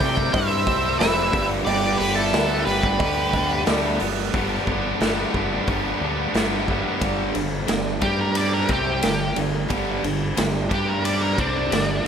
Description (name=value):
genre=classic rock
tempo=90 BPM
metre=4/4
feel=straight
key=G major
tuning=A4 = 440 Hz
part: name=octave-fuzz lead guitar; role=melody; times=0.0-3.6, 8.0-12.0 s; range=D4 to G5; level=-25 LUFS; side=equal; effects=distortion, slapback echo
part: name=octave-fuzz lead guitar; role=second line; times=0.0-3.6 s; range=E4 to D5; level=-28 LUFS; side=right 4 dB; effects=distortion
part: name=clear upright piano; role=accompaniment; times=0.0-4.2 s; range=C4 to D5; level=-34 LUFS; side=left 5 dB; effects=none
part: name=picked twelve-string acoustic guitar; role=accompaniment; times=0.0-12.1 s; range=G2 to G4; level=-33 LUFS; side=right 8 dB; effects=none
part: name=tight distorted guitar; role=riff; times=0.0-12.1 s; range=G2 to G4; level=-27 LUFS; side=left 12 dB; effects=distortion
part: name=tight distorted guitar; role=riff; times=0.0-12.1 s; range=G2 to G4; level=-28 LUFS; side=right 13 dB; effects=distortion
part: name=growling fingered electric bass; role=bass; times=0.0-12.1 s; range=F1 to C3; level=-28 LUFS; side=equal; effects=overdrive
part: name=raw garage drum kit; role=drums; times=0.0-11.9 s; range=hi-hat, kick drum, ride cymbal, snare drum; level=-25 LUFS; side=equal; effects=none
part: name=cowbell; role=percussion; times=0.3-3.8 s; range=none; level=-33 LUFS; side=right 12 dB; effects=none
room=light reverb, studio reverb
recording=none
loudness=-19 LUFS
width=side -7 dB against mid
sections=0.0-4.3 A section; 4.3-7.0 B section; 7.0-12.1 C section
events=lead electric guitar solo 7.0-12.1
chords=0.0 C; 1.3 G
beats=0.34 1.00 | 1.67 2.34 3.00 3.67 | 4.34 5.01 5.68 6.35 | 7.02 7.69 8.36 9.03 | 9.70 10.38 11.05 11.72